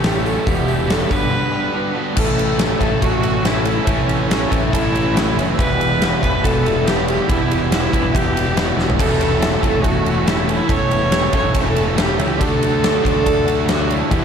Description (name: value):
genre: classic rock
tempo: 141 BPM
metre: 4/4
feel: straight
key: unclear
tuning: A4 = 440 Hz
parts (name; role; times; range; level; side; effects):
- clear viola; melody; 0.0-14.2 s; C#4 to C#5; -21 LUFS; right 1 dB; slapback echo
- honky-tonk upright piano; accompaniment; 0.0-14.2 s; B3 to B4; -29 LUFS; right 5 dB; none
- crunchy overdriven guitar; riff; 0.0-14.2 s; E2 to G4; -25 LUFS; right 10 dB; spring reverb, slapback echo
- overdriven semi-hollow guitar; riff; 0.0-14.2 s; E2 to D4; -25 LUFS; left 11 dB; slapback echo
- fuzz fingered electric bass; bass; 0.0-14.2 s; E1 to E2; -23 LUFS; equal; overdrive
- huge arena drum kit; drums; 0.0-14.2 s; crash cymbal, hi-hat, kick drum, ride cymbal, snare drum, toms; -19 LUFS; equal; none
- bright tonewheel organ; sustained chords; 2.1-14.2 s; none; barely audible; none; none
- overdriven semi-hollow guitar; riff; 2.2-14.2 s; E2 to D4; -26 LUFS; equal; none
room: moderate lush hall reverb, RT60 1.8 s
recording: big arena sound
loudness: -15 LUFS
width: side -7 dB against mid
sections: 0.0-2.2 A section; 2.2-14.2 B section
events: break 1.3-2.2; drum fill 8.8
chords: 0.5 Em; 1.1 G; 2.2 A; 5.6 Em; 9.0 A/E; 12.4 D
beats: 0.04 | 0.46 0.89 1.32 1.74 | 2.17 2.60 3.02 3.45 | 3.87 4.30 4.73 5.15 | 5.58 6.00 6.43 6.86 | 7.28 7.71 8.13 8.56 | 8.99 9.41 9.84 10.27 | 10.69 11.12 11.54 11.97 | 12.40 12.82 13.25 13.68 | 14.10